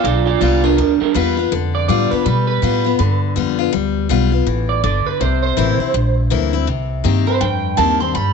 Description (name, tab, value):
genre	rockabilly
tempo	163 BPM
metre	4/4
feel	swing 62% on 8ths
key	G mixolydian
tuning	A4 = 440 Hz
part	electric guitar through a small old amp	melody	0.0-8.3 s	D4 to C6	-19 LUFS	right 12 dB	lush chorus, tape echo
part	picked steel-string acoustic guitar	accompaniment	0.0-8.3 s	G2 to G4	-19 LUFS	left 14 dB	none
part	upright bass	bass	0.0-8.3 s	G1 to B2	-18 LUFS	right 1 dB	none
room	light reverb, small room ambience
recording	1960s-style stereo with parts hard left and right, nothing above 8.0 kHz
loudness	-14 LUFS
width	side -5 dB against mid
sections	0.0-8.3 A section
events	none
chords	0.0 G7; 5.2 C7; 6.7 Cm7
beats	0.05 0.41 | 0.78 1.15 1.52 1.89 | 2.26 2.62 2.99 3.36 | 3.73 4.10 4.46 4.83 | 5.20 5.57 5.94 6.31 | 6.67 7.04 7.41 7.78 | 8.14